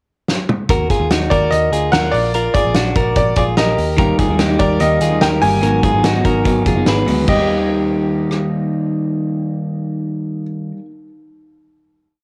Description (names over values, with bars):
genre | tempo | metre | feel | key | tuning
jangly indie pop | 146 BPM | 4/4 | straight | unclear | A4 = 439 Hz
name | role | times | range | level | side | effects
loose indie drum kit | drums | 0.3-8.4 s | crash cymbal, hi-hat, kick drum, rim click, snare drum, toms | -21 LUFS | equal | none
direct-recorded clean electric guitar | arpeggios | 0.7-8.5 s | D4 to Cb5 | -22 LUFS | equal | spring reverb, cassette tape, plate reverb
vintage muted picked electric bass | bass | 0.7-10.4 s | Gb1 to Eb2 | -23 LUFS | equal | none
bright upright piano | melody | 1.3-10.4 s | D5 to Ab5 | -21 LUFS | equal | cassette tape, plate reverb
electric guitar through a small old amp | accompaniment | 4.0-10.9 s | Ab2 to Eb4 | -21 LUFS | equal | spring reverb, cassette tape, plate reverb
room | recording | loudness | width
light reverb | home recording on cassette | -16 LUFS | mono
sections
0.0-0.7 pickup bar; 0.7-7.3 verse; 7.3-10.6 final chord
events
drum fill 0.3-0.7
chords
0.0 N.C.; 0.7 Ebmadd9; 2.1 Bb; 3.8 Eb; 5.6 Abm7; 7.3 Eb